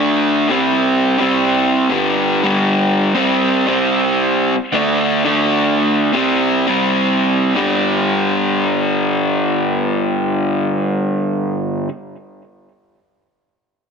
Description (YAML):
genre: punk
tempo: 170 BPM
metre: 4/4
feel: straight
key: unclear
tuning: A4 = 441 Hz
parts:
  - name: raw garage guitar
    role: solo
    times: 0.0-11.9 s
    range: G2 to D4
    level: -14 LUFS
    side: equal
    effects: overdrive, tape echo
room: moderate studio reverb, RT60 0.6 s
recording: dense, heavily limited modern master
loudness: -14 LUFS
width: side -6 dB against mid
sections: 0.0-1.9 A section; 1.9-7.6 B section; 7.6-10.4 C section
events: none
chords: 0.5 C5; 1.9 G5; 3.1 C5; 4.7 D5; 6.1 C5; 7.6 G5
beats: 0.14 | 0.50 0.85 1.20 1.55 | 1.90 2.26 2.61 2.96 | 3.31 3.67 4.02 4.37 | 4.73 5.08 5.43 5.79 | 6.14 6.49 6.85 7.20 | 7.55 7.91 8.26 8.61 | 8.96 9.32 9.67 10.02